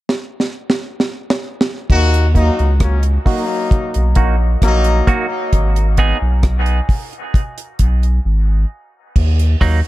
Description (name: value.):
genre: dub reggae.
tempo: 66 BPM.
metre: 4/4.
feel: straight.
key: Eb minor.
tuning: A4 = 440 Hz.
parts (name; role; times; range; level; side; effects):
deep reggae drum kit; drums; 0.1-9.9 s; crash cymbal, hi-hat, kick drum, rim click, snare drum; -16 LUFS; equal; none.
warm horn section; second line; 1.9-5.3 s; Gb3 to Gb4; -20 LUFS; left 2 dB; dub echo.
warm sub bass; bass; 1.9-9.8 s; Ab1 to Eb2; -14 LUFS; equal; none.
clean electric guitar; accompaniment; 2.3-9.8 s; Gb3 to Ab4; -23 LUFS; right 4 dB; low-pass filter, dub echo.
room: small room ambience.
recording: none.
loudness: -13 LUFS.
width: side -17 dB against mid.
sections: 0.0-1.9 A section; 1.9-9.2 B section.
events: drum fill 0.1-1.9; filter sweep on clean electric guitar 1.9-9.2; break 5.5-9.2.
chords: 0.0 N.C.; 1.9 Ebm; 5.5 Abm; 9.2 Ebm.